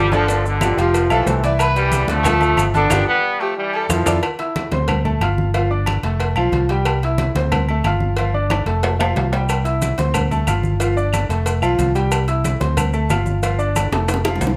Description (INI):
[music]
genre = latin, salsa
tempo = 182 BPM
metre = 4/4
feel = straight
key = C major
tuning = A4 = 440 Hz
[part]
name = brilliant trombone section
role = melody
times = 0.0-4.1 s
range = B2 to D4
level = -22 LUFS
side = equal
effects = none
[part]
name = bright concert grand piano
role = accompaniment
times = 0.0-14.5 s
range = D3 to F6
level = -24 LUFS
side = equal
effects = none
[part]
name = fingered electric bass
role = bass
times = 0.0-14.6 s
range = F1 to F2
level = -22 LUFS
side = equal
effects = none
[part]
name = warm erhu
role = second line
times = 0.1-4.2 s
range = G4 to D5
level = -26 LUFS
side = equal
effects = none
[part]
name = congas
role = percussion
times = 0.1-14.6 s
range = none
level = -29 LUFS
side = equal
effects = none
[part]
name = maracas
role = percussion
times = 0.1-4.1, 9.5-14.6 s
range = none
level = -36 LUFS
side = equal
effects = none
[part]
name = agogo bells and timbales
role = percussion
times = 0.3-14.5 s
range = none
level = -28 LUFS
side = equal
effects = none
[part]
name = cowbell and bongos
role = percussion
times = 0.3-14.6 s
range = none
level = -30 LUFS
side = equal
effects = none
[part]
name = claves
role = percussion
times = 0.6-14.4 s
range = none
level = -34 LUFS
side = equal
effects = none
[sound]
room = light reverb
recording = close, detailed microphones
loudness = -18 LUFS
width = mono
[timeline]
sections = 0.0-4.2 A section; 4.2-14.6 B section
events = band accent 2.9-4.2; drum fill 3.2-4.2, 8.5-9.5, 13.9-14.6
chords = 0.3 G7; 0.9 Fmaj7; 1.6 Cmaj7; 2.3 G7; 3.6 Fmaj7; 4.2 C; 4.9 Dm7; 5.5 G5; 6.2 F; 6.9 C; 7.5 Dm7; 8.2 G5; 8.8 F; 9.5 C; 10.1 Dm7; 10.8 G5; 11.5 F; 12.1 C; 12.8 Dm7; 13.4 G5